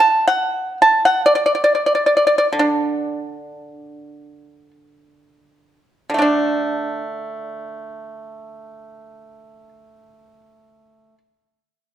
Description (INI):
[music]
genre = chinese traditional, Chinese solo plucked strings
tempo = free time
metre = none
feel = none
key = D gong mode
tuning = A4 = 441 Hz
[part]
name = pipa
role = solo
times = 0.0-11.2 s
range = D3 to A5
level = -16 LUFS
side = equal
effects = none
[sound]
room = moderate recital hall reverb, RT60 1.6 s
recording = none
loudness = -15 LUFS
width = side -11 dB against mid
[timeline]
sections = 0.0-6.2 A section; 6.2-10.1 B section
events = slowing down 0.0-6.2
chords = none